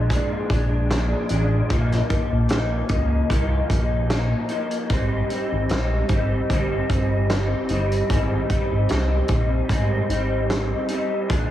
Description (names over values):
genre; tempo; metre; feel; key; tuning
indie pop, bedroom pop; 75 BPM; 4/4; swing 55% on 16ths; Ab major; A4 = 440 Hz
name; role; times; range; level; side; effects
electric guitar through a small old amp; accompaniment; 0.0-11.5 s; Ab2 to Eb4; -24 LUFS; left 1 dB; ensemble chorus, warbly pitch drift
chorused synth bass; bass; 0.0-11.5 s; G1 to Db2; -22 LUFS; equal; none
loose indie drum kit; drums; 0.1-11.5 s; hi-hat, kick drum, snare drum; -25 LUFS; equal; none
room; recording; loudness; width
light reverb, small room ambience; heavily compressed radio sound, studio reverb; -19 LUFS; side -12 dB against mid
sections
0.0-11.5 A section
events
none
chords
0.0 Bb7; 1.7 Ebsus2/Bb; 4.9 Abmaj7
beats
0.10 0.90 | 1.70 2.50 3.30 4.10 | 4.90 5.70 6.50 7.30 | 8.10 8.90 9.70 10.50 | 11.30